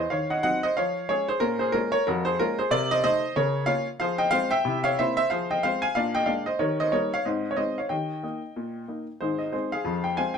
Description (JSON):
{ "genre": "jazz, stride piano", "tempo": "185 BPM", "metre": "4/4", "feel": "swing 61% on 8ths", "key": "Ab major from 4.0 s", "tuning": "A4 = 439 Hz", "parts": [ { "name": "warm upright piano", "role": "solo", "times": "0.0-10.4 s", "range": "Ab1 to Ab5", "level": "-23 LUFS", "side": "equal", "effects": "none" } ], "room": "moderate studio reverb, RT60 0.8 s", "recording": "band playing live in one room", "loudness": "-23 LUFS", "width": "side -6 dB against mid", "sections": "0.0-9.2 A section; 9.2-10.4 B section", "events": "none", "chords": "0.1 Cdim/Eb; 0.8 Db/F; 1.4 Bbm7; 2.7 Adim/C; 3.4 Bbm/Db; 4.0 Fm; 4.7 C7; 5.3 Fm; 6.0 Bb7; 6.6 Eb7; 7.3 Ab; 7.9 Eb; 9.2 Ab; 9.9 Fm" }